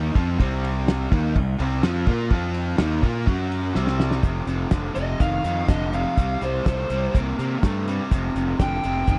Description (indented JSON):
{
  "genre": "classic rock",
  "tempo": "124 BPM",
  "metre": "4/4",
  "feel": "straight",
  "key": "unclear",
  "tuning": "A4 = 441 Hz",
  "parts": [
    { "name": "cranked stack guitar", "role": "riff", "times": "0.0-9.2 s", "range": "F2 to Bb4", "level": "-33 LUFS", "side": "equal", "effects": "overdrive" },
    { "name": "overdriven electric guitar", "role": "riff", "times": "0.0-9.2 s", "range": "F2 to Bb4", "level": "-31 LUFS", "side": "equal", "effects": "none" },
    { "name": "fuzz fingered electric bass", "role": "bass", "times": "0.0-9.2 s", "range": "F1 to C3", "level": "-28 LUFS", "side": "equal", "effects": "overdrive" },
    { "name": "cloth-damped thuddy drum kit", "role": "drums", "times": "0.2-9.2 s", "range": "hi-hat, kick drum, ride cymbal, snare drum", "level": "-25 LUFS", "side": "equal", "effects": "none" },
    { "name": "fuzz lead guitar", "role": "melody", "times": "4.9-9.2 s", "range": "C5 to G5", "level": "-30 LUFS", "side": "equal", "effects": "distortion" }
  ],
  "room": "little or no reverb",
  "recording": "dry, close 1970s-style studio recording, lossy compression artefacts",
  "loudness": "-23 LUFS",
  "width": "mono",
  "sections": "0.0-4.2 A section; 4.2-9.2 B section",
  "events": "drum fill 3.8-4.2; lead electric guitar solo 4.2-9.2",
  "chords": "0.0 C5; 2.3 F5; 2.8 Ebsus2; 3.3 F#5; 3.8 C5; 4.2 F5; 6.2 C5; 8.1 F5"
}